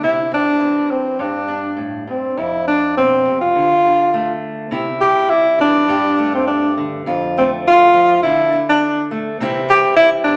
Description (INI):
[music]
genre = highlife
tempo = 103 BPM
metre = 4/4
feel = swing 55% on 16ths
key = C major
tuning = A4 = 440 Hz
[part]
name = breathy tenor saxophone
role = melody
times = 0.0-10.4 s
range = C4 to G4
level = -16 LUFS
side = equal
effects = none
[part]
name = fingerpicked steel-string acoustic guitar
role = accompaniment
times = 0.0-10.4 s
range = F2 to G4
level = -25 LUFS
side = equal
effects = none
[sound]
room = wet large studio reverb, RT60 1.3 s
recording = none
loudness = -16 LUFS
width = mono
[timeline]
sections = 0.0-4.7 A section; 4.7-10.4 B section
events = none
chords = 0.0 C; 1.2 Gsus2; 2.4 F5; 3.5 Dm; 4.7 C; 5.9 Gsus2; 7.1 F6; 8.2 D5; 9.4 C